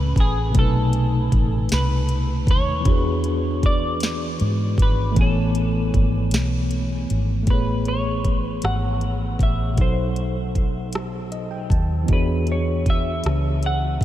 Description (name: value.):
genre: slow six-eight R&B.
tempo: 52 BPM (dotted quarters).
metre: 6/8.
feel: straight.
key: A major.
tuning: A4 = 440 Hz.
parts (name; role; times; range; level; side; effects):
semi-hollow electric guitar; melody; 0.0-14.0 s; G#4 to F#5; -28 LUFS; equal; analog chorus, diffuse ambient delay.
tine electric piano; accompaniment; 0.0-14.0 s; A2 to A5; -25 LUFS; equal; medium stereo tremolo.
vintage muted fingered electric bass; bass; 0.0-14.0 s; G#1 to G#2; -23 LUFS; equal; none.
smooth R&B drum kit; drums; 0.2-14.0 s; hi-hat, kick drum, rim click, snare drum; -22 LUFS; equal; none.
room: light reverb, digital ambience.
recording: none.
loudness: -19 LUFS.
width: side -13 dB against mid.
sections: 0.0-7.5 A section; 7.5-14.0 B section.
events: break 6.3-7.5; tine electric piano fill 10.9-12.1.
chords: 0.0 Amaj9; 0.5 B7b9; 2.9 E13; 5.2 Amaj9; 9.8 B7b9; 12.1 E13.